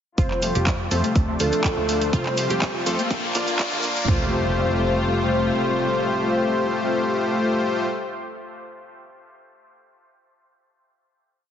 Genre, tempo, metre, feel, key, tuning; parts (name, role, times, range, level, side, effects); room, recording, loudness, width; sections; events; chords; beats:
progressive house; 123 BPM; 4/4; straight; F major; A4 = 440 Hz
soft octave-layered synth lead; melody; 0.2-7.9 s; A4 to C5; -28 LUFS; left 1 dB; chorus, dub echo
muted studio string section; sustained chords; 0.2-7.9 s; C3 to F4; -30 LUFS; equal; sidechain pumping, low-pass filter
wide unison pluck; arpeggios; 0.2-7.9 s; F3 to A4; -30 LUFS; equal; phaser, sidechain pumping, dub echo
plucky analog bass; bass; 0.2-5.5 s; F1 to F2; -27 LUFS; right 1 dB; sidechain pumping
pop drum kit; drums; 0.2-4.2 s; kick drum, toms; -22 LUFS; right 1 dB; small room reverb
pop drum kit; drums; 0.2-4.1 s; handclaps, hi-hat; -28 LUFS; right 1 dB; small room reverb
tube shaker; percussion; 0.2-4.1 s; -37 LUFS; left 1 dB
riser and impact; sound effects; 1.3-7.9 s; -33 LUFS; left 1 dB
soft supersaw; stabs; 0.4-7.9 s; A3 to D5; -24 LUFS; left 2 dB; cassette tape, sidechain pumping, low-pass filter, dub echo
moderate concert hall reverb, RT60 1.9 s, digital ambience; heavily compressed radio sound, multiband compression, high-pass filter, nothing above 7.6 kHz; -20 LUFS; side -9 dB against mid
0.2-4.1 build; 4.1-8.0 final chord
build-up 0.2-4.1; filter sweep on synth pluck 0.2-4.1; filter sweep on supersaw synth 0.2-4.1; filter sweep on string section 0.2-4.1; filter sweep 0.2-4.1; riser 1.3-4.1
0.2 Fadd9; 1.2 Dm7; 2.1 Fadd9; 3.1 Bb; 4.1 Fadd9
| 0.18 0.67 1.16 1.64 | 2.13 2.62 3.11 3.60 | 4.08 4.57 5.06 5.55 | 6.03 6.52 7.01 7.50